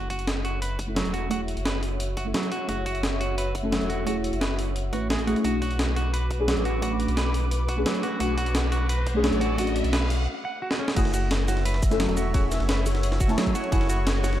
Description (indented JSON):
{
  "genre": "liquid drum and bass",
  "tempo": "174 BPM",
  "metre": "4/4",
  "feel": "straight",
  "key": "F# minor",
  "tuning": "A4 = 440 Hz",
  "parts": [
    { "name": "deep mellow chord stab", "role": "accompaniment", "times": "0.0-14.4 s", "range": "A3 to B4", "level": "-29 LUFS", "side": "equal", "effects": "chorus, phaser, digital delay" },
    { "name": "lush unison pad", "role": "sustained chords", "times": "0.6-14.4 s", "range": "F#4 to D6", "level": "-35 LUFS", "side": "left 1 dB", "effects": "chorus, sidechain pumping" },
    { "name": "semi-hollow electric guitar", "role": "arpeggios", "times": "0.0-14.4 s", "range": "F#3 to F#5", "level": "-32 LUFS", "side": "right 2 dB", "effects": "low-pass filter, digital delay" },
    { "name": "sub bass with octave", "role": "bass", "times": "0.0-14.4 s", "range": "E1 to B1", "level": "-27 LUFS", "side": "equal", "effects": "none" },
    { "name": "breakbeat sampler-style drum kit", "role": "drums", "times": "0.1-14.3 s", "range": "cabasa, crash cymbal, hi-hat, snare drum", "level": "-30 LUFS", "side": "equal", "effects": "none" },
    { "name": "electronic kick drum", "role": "drums", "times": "0.1-13.8 s", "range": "none", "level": "-26 LUFS", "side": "equal", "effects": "high-pass filter on kick" },
    { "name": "riser", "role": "sound effects", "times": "7.4-10.3 s", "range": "none", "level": "-38 LUFS", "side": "left 1 dB", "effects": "none" },
    { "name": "breakbeat sampler-style drum kit", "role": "drums", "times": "11.0-14.4 s", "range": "ride cymbal, snare drum", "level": "-36 LUFS", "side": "equal", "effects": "high-pass filter on cymbals, high-pass filter on snare" },
    { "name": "bongos", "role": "percussion", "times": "11.5-14.3 s", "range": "none", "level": "-38 LUFS", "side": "equal", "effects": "none" }
  ],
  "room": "moderate scoring stage reverb, RT60 1.9 s",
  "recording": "dark, warm production",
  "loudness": "-23 LUFS",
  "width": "side -12 dB against mid",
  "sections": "0.0-11.0 A section; 11.0-14.4 B section",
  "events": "build-up 0.0-11.0; filter sweep on synth stab 0.0-11.0; filter sweep on analog synth pad 0.0-11.0; riser 7.4-10.3; break 10.3-11.0; drum fill 10.7; drop 11.0-14.4",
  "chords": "0.0 F#m7; 5.4 Bm7; 11.0 F#m7",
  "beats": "0.27 0.62 0.96 | 1.31 1.65 2.00 2.34 | 2.69 3.03 3.38 3.72 | 4.07 4.41 4.76 5.10 | 5.45 5.79 6.14 6.48 | 6.83 7.17 7.51 7.86 | 8.21 8.55 8.89 9.24 | 9.58 9.93 10.27 10.62 | 10.96 11.31 11.65 12.00 | 12.34 12.69 13.03 13.38 | 13.72 14.07"
}